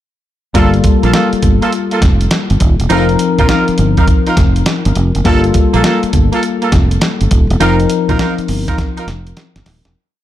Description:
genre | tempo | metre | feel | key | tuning
R&B, new jack swing | 102 BPM | 4/4 | swing 65% on 16ths | G minor | A4 = 440 Hz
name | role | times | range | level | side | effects
bell-like tine electric piano | accompaniment | 0.5-10.0 s | F3 to Bb4 | -15 LUFS | left 5 dB | lush chorus
mellow horn section | stabs | 0.5-9.1 s | Bb3 to Bb4 | -18 LUFS | right 4 dB | none
fingered electric bass | bass | 0.5-9.9 s | Eb1 to Bb1 | -14 LUFS | right 1 dB | none
dusty soul sampler-style drum kit | drums | 0.5-10.0 s | hi-hat, kick drum, snare drum | -14 LUFS | right 1 dB | none
room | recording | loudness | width
little or no reverb | dark, warm production | -10 LUFS | side -12 dB against mid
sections
0.5-10.0 verse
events
fade-out 7.6-10.0; drum fill 8.8-10.0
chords
0.5 Gm9; 2.9 F7sus4; 5.3 Gm9; 7.6 F7sus4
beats
| 0.55 1.14 1.73 2.31 | 2.90 3.49 4.08 4.67 | 5.25 5.84 6.43 7.02 | 7.61 8.20 8.78 9.37

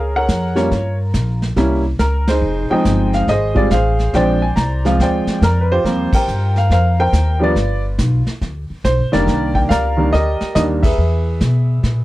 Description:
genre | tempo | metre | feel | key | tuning
jazz piano trio | 140 BPM | 4/4 | swing 65% on 8ths | Eb major | A4 = 440 Hz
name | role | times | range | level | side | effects
warm grand piano | melody | 0.0-12.0 s | Eb3 to Bb5 | -17 LUFS | equal | none
upright bass | bass | 0.0-12.0 s | F1 to B2 | -17 LUFS | equal | none
vintage brush drum kit | drums | 0.3-12.0 s | brushed snare drum, crash cymbal, hi-hat, kick drum, ride cymbal, snare drum | -21 LUFS | equal | none
room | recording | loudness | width
little or no reverb | none | -14 LUFS | side -16 dB against mid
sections
0.0-12.0 A section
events
band accent 2.2, 6.1, 10.8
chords
0.0 Gbmaj9; 0.7 Bbm6; 1.6 C7b9; 2.4 Fm7; 4.1 Bb9; 5.8 Eb69; 7.6 G7; 9.3 Cm9; 11.0 E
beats
0.29 | 0.71 1.14 1.57 2.00 | 2.43 2.85 3.28 3.71 | 4.14 4.57 4.99 5.42 | 5.85 6.28 6.70 7.13 | 7.56 7.99 8.41 8.84 | 9.27 9.70 10.13 10.55 | 10.98 11.41 11.84

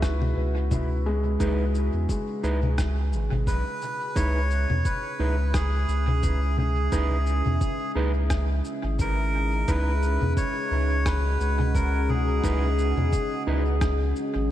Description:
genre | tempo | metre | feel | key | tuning
ambient dub | 87 BPM | 4/4 | swing 56% on 16ths | C# minor | A4 = 440 Hz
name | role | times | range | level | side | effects
deep dark ambient pad | sustained chords | 0.0-14.5 s | C#4 to F#5 | -32 LUFS | left 1 dB | chorus, built-in reverb
felt-muted upright piano | arpeggios | 0.0-4.2 s | G#3 to B4 | -32 LUFS | left 1 dB | dub echo
warm sub bass | bass | 0.0-14.5 s | G#1 to E2 | -24 LUFS | equal | none
electronic kick drum | drums | 0.0-14.0 s | none | -28 LUFS | equal | overdrive, small room ambience
electronic rim click, cabasa and congas | drums | 0.0-14.3 s | none | -33 LUFS | left 2 dB | overdrive, small room ambience, dub echo
mellow electric guitar | stabs | 1.4-13.6 s | D#4 to B4 | -34 LUFS | right 2 dB | vintage 12-bit sampler grit, dub echo
melodica | melody | 3.5-13.4 s | G#4 to C#5 | -30 LUFS | right 1 dB | dub echo
room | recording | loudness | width
moderate lush hall reverb, RT60 2.5 s | dreamy mix soaked in reverb | -22 LUFS | side -12 dB against mid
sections
0.0-4.2 A section; 4.2-14.5 B section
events
none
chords
0.0 C#m7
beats
0.03 0.72 | 1.41 2.10 2.79 3.48 | 4.16 4.85 5.54 6.23 | 6.92 7.61 8.30 8.99 | 9.68 10.37 11.06 11.75 | 12.44 13.13 13.82 14.51

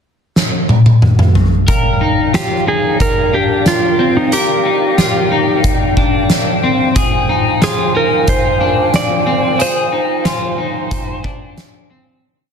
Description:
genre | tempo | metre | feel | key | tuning
dream pop | 91 BPM | 4/4 | straight | Eb major | A4 = 437 Hz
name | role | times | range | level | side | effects
oversized low-tuned drum kit | drums | 0.4-11.7 s | hi-hat, kick drum, snare drum, toms | -14 LUFS | equal | none
large flute ensemble | sustained chords | 1.7-12.2 s | F4 to Ab5 | -20 LUFS | equal | none
electric guitar at the edge of break-up | arpeggios | 1.7-12.2 s | C4 to Bb4 | -18 LUFS | left 3 dB | lush chorus, tape echo
clean lap steel guitar | melody | 2.4-11.5 s | Eb4 to D5 | -17 LUFS | right 2 dB | tape echo
room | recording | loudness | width
light reverb, small room ambience | dense, heavily limited modern master | -11 LUFS | side -6 dB against mid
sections
0.0-1.7 pickup bar; 1.7-12.2 verse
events
drum fill 0.4-1.7; fade-out 9.6-12.2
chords
0.0 N.C.; 1.7 Ebmaj7; 7.0 Fm7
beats
0.37 1.03 | 1.69 2.34 3.00 3.66 | 4.32 4.98 5.64 6.30 | 6.96 7.62 8.28 8.94 | 9.60 10.26 10.92 11.57

